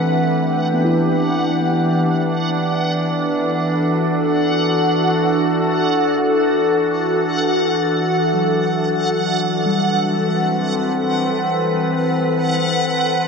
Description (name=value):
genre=ambient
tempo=free time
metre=none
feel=none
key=unclear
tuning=A4 = 440 Hz
part: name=evolving wavetable pad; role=sustained chords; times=0.0-13.3 s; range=E3 to B4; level=-17 LUFS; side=left 1 dB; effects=chorus, built-in reverb, shimmer reverb
part: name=muted felt-like synth keys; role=arpeggios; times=0.0-12.9 s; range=F#3 to E4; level=-26 LUFS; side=left 2 dB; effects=chorus, ping-pong delay, shimmer reverb
part: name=backwards swelling texture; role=texture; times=0.0-13.3 s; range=F#5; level=-23 LUFS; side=right 2 dB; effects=built-in reverb, shimmer reverb
room=wet huge ambient reverb, RT60 8.0 s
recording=worn, warbling old tape, cassette tape, warbly pitch drift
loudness=-16 LUFS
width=side -5 dB against mid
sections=0.0-13.3 A section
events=fade-out on synth keys 0.0-13.3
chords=0.0 G6; 2.4 Dadd9; 9.4 Amadd9